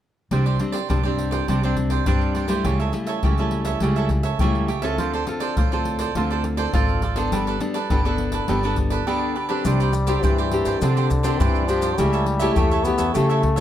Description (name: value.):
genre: samba and choro.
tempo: 103 BPM.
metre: 4/4.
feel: straight.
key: C major.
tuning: A4 = 440 Hz.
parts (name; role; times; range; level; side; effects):
cavaquinho; accompaniment; 0.3-13.6 s; D4 to E5; -26 LUFS; right 7 dB; none.
nylon-string guitar; accompaniment; 0.3-13.6 s; G2 to A4; -25 LUFS; left 3 dB; none.
upright bass; bass; 0.3-13.6 s; G1 to C#3; -24 LUFS; right 1 dB; none.
surdo, pandeiro and maracas; percussion; 0.3-13.6 s; none; -25 LUFS; left 1 dB; none.
clear trombone; second line; 9.6-13.6 s; D3 to B3; -24 LUFS; left 3 dB; none.
room: moderate studio reverb, RT60 0.8 s.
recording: none.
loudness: -19 LUFS.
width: side -11 dB against mid.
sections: 0.3-9.7 A section; 9.7-13.6 B section.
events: break 9.1-9.7.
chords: 0.3 Csus2; 2.7 A7/C#; 5.0 Dm7; 7.3 Gadd9; 9.7 Csus2; 12.0 A7/C#.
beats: | 0.31 0.90 1.48 2.07 | 2.65 3.23 3.82 4.40 | 4.99 5.57 6.15 6.74 | 7.32 7.90 8.49 9.07 | 9.65 10.23 10.82 11.40 | 11.98 12.57 13.15.